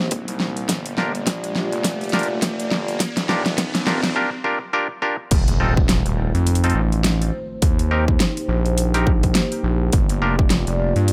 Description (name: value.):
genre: glitch hop.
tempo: 104 BPM.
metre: 4/4.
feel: swing 58% on 16ths.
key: C dorian.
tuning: A4 = 440 Hz.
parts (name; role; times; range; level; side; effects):
dark analog pad; sustained chords; 0.0-11.1 s; A3 to D5; -30 LUFS; equal; chorus, phaser, sidechain pumping.
gritty driven synth bass; bass; 0.0-11.1 s; Eb1 to G2; -24 LUFS; equal; high-pass filter.
riser and impact; sound effects; 0.1-7.6 s; none; -31 LUFS; equal; none.
dubstep drum kit; drums; 0.1-11.1 s; crash cymbal, hi-hat, snare drum; -25 LUFS; equal; none.
electronic kick drum; drums; 0.1-10.5 s; none; -22 LUFS; equal; high-pass filter on kick.
bright clav; stabs; 1.0-10.4 s; C4 to Bb4; -26 LUFS; equal; vintage 12-bit sampler grit, sidechain pumping, low-pass filter, digital delay.
room: little or no reverb.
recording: none.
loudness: -20 LUFS.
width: mono.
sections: 0.0-5.3 A section; 5.3-11.1 B section.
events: build-up 0.0-5.3; drum fill 0.0-4.2; riser 0.1-4.2; break 4.2-5.3; drop 5.3-11.1; impact 5.3-7.6.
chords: 0.0 Cm7; 0.7 Gm7; 3.0 Ebmaj7; 5.3 F7; 7.6 Cm7; 9.9 Gm7.